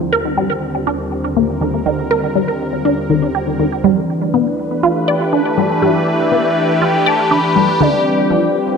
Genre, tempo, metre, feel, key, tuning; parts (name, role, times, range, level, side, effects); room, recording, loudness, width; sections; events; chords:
ambient, sequencer-driven space music; 121 BPM; 4/4; straight; A4 = 439 Hz
sweeping resonant pad; sustained chords; 0.0-8.8 s; Eb2 to B4; -18 LUFS; equal; chorus
resonant blip pluck; riff; 0.1-8.5 s; D3 to D5; -16 LUFS; equal; phaser, vintage 12-bit sampler grit, tape echo
soft octave-layered synth lead; melody; 3.8-8.6 s; D5 to B5; -18 LUFS; left 2 dB; chorus, tremolo, tape echo
wet plate reverb, RT60 3.0 s; dark, warm production; -13 LUFS; side -5 dB against mid
0.0-8.8 A section
fade-in on analog synth pad 0.0-8.8; filter sweep on synth arpeggio sound 0.0-8.8
0.0 Eb; 3.8 G; 7.8 Dm